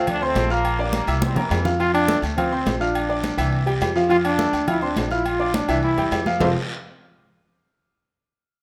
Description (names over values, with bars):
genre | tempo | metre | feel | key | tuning
latin, salsa | 208 BPM | 4/4 | straight | F major | A4 = 440 Hz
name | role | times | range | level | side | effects
brilliant trombone section | melody | 0.0-1.7 s | C3 to D4 | -27 LUFS | equal | none
clear concert grand piano | accompaniment | 0.0-6.5 s | E3 to F6 | -26 LUFS | equal | none
upright bass | bass | 0.0-6.5 s | F1 to F2 | -28 LUFS | equal | none
agogo bells and timbales | percussion | 0.1-6.5 s | none | -30 LUFS | equal | none
congas | percussion | 0.1-6.5 s | none | -31 LUFS | equal | none
guiro | percussion | 0.1-6.5 s | none | -39 LUFS | equal | none
bright trombone | melody | 1.8-6.5 s | C4 to F4 | -25 LUFS | equal | none
room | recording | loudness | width
moderate large studio reverb, RT60 1.2 s | none | -21 LUFS | mono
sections
0.0-1.8 A section; 1.8-6.4 B section; 6.4-7.6 C section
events
drum fill 1.2-1.8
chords
0.1 Dm7; 0.6 Bb; 1.2 C7; 1.8 F; 2.4 Dm7; 3.0 Bb; 3.5 C; 4.1 F; 4.7 Dm7; 5.3 Bb; 5.8 C; 6.4 F5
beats
0.07 0.36 | 0.65 0.94 1.22 1.51 | 1.80 2.09 2.37 2.66 | 2.95 3.24 3.52 3.81 | 4.10 4.39 4.68 4.96 | 5.25 5.54 5.83 6.12 | 6.40